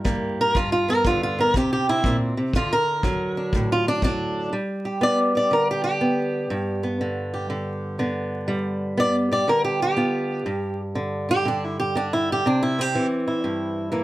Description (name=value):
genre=acoustic country blues, solo or duo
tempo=121 BPM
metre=4/4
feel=swing 65% on 8ths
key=unclear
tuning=A4 = 440 Hz
part: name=fingerpicked swing-style acoustic guitar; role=melody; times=0.0-14.0 s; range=G2 to D5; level=-21 LUFS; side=equal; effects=none
part: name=kick drum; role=drums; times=0.1-4.2 s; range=none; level=-26 LUFS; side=equal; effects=none
room=moderate studio reverb, RT60 0.6 s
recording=vinyl crackle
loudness=-20 LUFS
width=side -16 dB against mid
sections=0.0-4.5 A section; 4.5-14.0 A section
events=steel-string acoustic guitar solo 0.0-4.5, 4.5-14.0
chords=0.0 C7 (rootless); 0.5 G; 1.5 C7; 2.5 D; 4.5 G; 12.4 C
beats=0.05 | 0.55 1.04 1.54 2.04 | 2.53 3.03 3.52 4.02 | 4.52 5.01 5.51 6.00 | 6.50 7.00 7.49 7.99 | 8.48 8.98 9.47 9.97 | 10.46 10.96 11.45 11.95 | 12.44 12.93 13.43 13.92